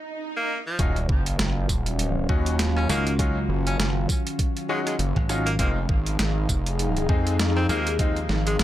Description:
glitch hop; 100 BPM; 4/4; swing 57% on 16ths; Eb minor; A4 = 440 Hz
swell and sub drop; sound effects; 0.0-3.2 s; -34 LUFS; right 1 dB
edgy tenor saxophone; melody; 0.4-8.6 s; F3 to Db4; -31 LUFS; equal; vintage 12-bit sampler grit, tape echo
warbly tape-like pad; sustained chords; 0.8-8.6 s; Eb3 to Ab4; -33 LUFS; left 3 dB; chorus, built-in reverb, sidechain pumping
bright grand piano; stabs; 0.8-8.2 s; Gb3 to Ab4; -30 LUFS; left 3 dB; vintage 12-bit sampler grit, sidechain pumping, tape echo
gritty driven synth bass; bass; 0.8-8.6 s; Eb1 to F2; -24 LUFS; equal; distortion, tube saturation
boom bap sampler-style drum kit; drums; 0.8-8.6 s; hi-hat, rim click, snare drum, tambourine; -28 LUFS; right 1 dB; overdrive
electronic kick drum; drums; 0.8-8.1 s; -24 LUFS; equal; high-pass filter on kick
airy breathy pad; texture; 1.3-8.6 s; Gb3 to F5; -32 LUFS; equal; chorus, sidechain pumping
glassy slap bass; bass; 2.9-8.3 s; Ab1 to Eb2; -26 LUFS; equal
light reverb; -22 LUFS; side -13 dB against mid
0.8-8.6 A section
break 0.0-0.8; swell 0.0-0.8; drop 0.8-8.6; impact 0.8-3.2
0.0 N.C.; 0.8 Ebm9; 5.6 Fm7
0.19 | 0.79 1.39 1.99 2.59 | 3.19 3.79 4.39 4.99 | 5.59 6.19 6.79 7.39 | 7.99 8.59

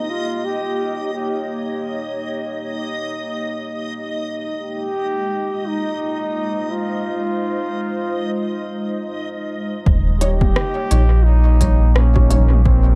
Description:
ambient dub; 86 BPM; 4/4; swing 57% on 16ths; A4 = 440 Hz
mellow trombone; melody; 0.0-13.0 s; C4 to G4; -27 LUFS; equal; vintage 12-bit sampler grit, dub echo
warbly tape-like pad; sustained chords; 0.0-13.0 s; Ab3 to Eb5; -30 LUFS; equal; chorus, built-in reverb
backwards swelling texture; texture; 0.0-9.9 s; Eb5; -33 LUFS; equal; built-in reverb
round analog bass; bass; 9.9-13.0 s; Eb1 to Bb1; -16 LUFS; equal
electronic kick drum; drums; 9.9-12.8 s; -21 LUFS; equal; overdrive, small room reverb
filtered dub chord stab; stabs; 10.2-12.5 s; G3 to Db5; -29 LUFS; equal; ensemble chorus, cassette tape, dub echo
organic electronic drum kit; drums; 10.2-12.6 s; hi-hat, rim click, toms; -28 LUFS; equal; overdrive, low-pass filter on hats, small room reverb, low-pass filter on toms, low-pass filter on snare, dub echo
little or no reverb; echo-heavy mix; -20 LUFS; mono
0.0-9.9 A section; 9.9-13.0 B section
0.0 Eb7; 4.3 Fm7; 9.9 Eb7
0.10 0.80 | 1.49 2.19 2.89 3.59 | 4.28 4.98 5.68 6.38 | 7.07 7.77 8.47 9.17 | 9.87 10.56 11.26 11.96 | 12.65

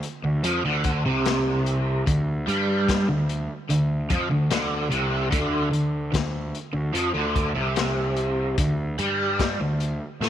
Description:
psychedelic rock; 74 BPM; 4/4; straight; D minor; A4 = 444 Hz
crunchy breakbeat drum kit; drums; 0.0-10.3 s; hi-hat, kick drum, snare drum; -28 LUFS; left 3 dB
overdriven semi-hollow guitar; riff; 0.2-10.3 s; C3 to A3; -23 LUFS; equal; rotary speaker
fuzz picked electric bass; bass; 0.2-10.3 s; C2 to A2; -29 LUFS; equal; overdrive
light reverb, small room ambience; 1960s-style stereo; -22 LUFS; side -10 dB against mid
0.0-10.3 A section
0.44 1.25 | 2.07 2.88 3.69 4.51 | 5.32 6.14 6.95 7.76 | 8.58 9.39 10.21

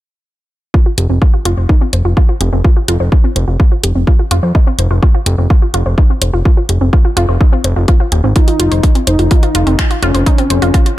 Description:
melodic techno; 126 BPM; 4/4; straight; A4 = 442 Hz
wide unison pluck; arpeggios; 0.7-10.9 s; C4 to C5; -19 LUFS; equal; sidechain pumping, ping-pong delay
electronic kick drum; drums; 0.7-10.8 s; -9 LUFS; equal
fat analog bass; bass; 1.0-10.7 s; Eb1 to F2; -13 LUFS; equal; sidechain pumping
house drum kit; drums; 1.0-11.0 s; finger snaps, hi-hat; -18 LUFS; equal
wide unison lead; melody; 8.4-10.9 s; Db4 to Eb4; -16 LUFS; left 1 dB; sidechain pumping, digital delay
little or no reverb; -9 LUFS; side -15 dB against mid
0.7-11.0 A section
filter sweep on synth arpeggio sound 0.7-11.0
0.7 F5; 8.4 Eb7sus2
| 0.74 1.22 1.69 2.17 | 2.65 3.12 3.60 4.07 | 4.55 5.03 5.50 5.98 | 6.46 6.93 7.41 7.88 | 8.36 8.84 9.31 9.79 | 10.27 10.74

